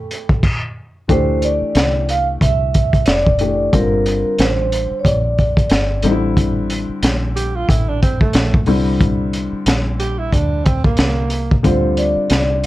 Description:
hip hop, jazz-hop; 91 BPM; 4/4; swing 59% on 16ths; A4 = 440 Hz
vibraphone with soft mallets; melody; 0.0-6.0, 11.7-12.7 s; A4 to F5; -19 LUFS; right 1 dB
dark upright piano; accompaniment; 0.0-12.7 s; D3 to G4; -21 LUFS; left 3 dB
crunchy breakbeat drum kit; drums; 0.1-12.7 s; crash cymbal, hi-hat, kick drum, snare drum; -16 LUFS; equal
deep dub fingered electric bass; bass; 1.1-12.7 s; F1 to D2; -20 LUFS; equal
breathy tenor saxophone; second line; 7.4-11.6 s; A3 to G4; -22 LUFS; right 4 dB
light reverb; cassette tape; -14 LUFS; side -16 dB against mid
0.0-1.1 A section; 1.1-12.7 B section
break 0.0-1.1
0.0 A7; 1.1 D7sus4; 3.7 Gm9; 6.0 C13/A; 8.7 C9; 11.6 D7sus4

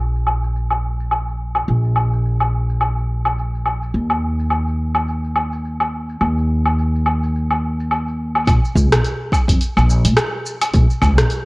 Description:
organic downtempo; 106 BPM; 4/4; swing 57% on 16ths; Bb minor; A4 = 442 Hz
upright bass; bass; 0.0-11.3 s; Bb1 to Bb2; -18 LUFS; equal; sidechain pumping
deep house drum kit; drums; 0.2-11.4 s; hi-hat, rim click, shaker, woodblock; -20 LUFS; equal; low-pass filter on perc, low-pass filter on hats, low-pass filter on snare, low-pass filter on room
electronic kick drum; drums; 8.5-11.1 s; -16 LUFS; equal
light reverb; worn, warbling old tape, cassette tape, warbly pitch drift; -16 LUFS; side -25 dB against mid
0.0-8.5 A section; 8.5-11.5 B section

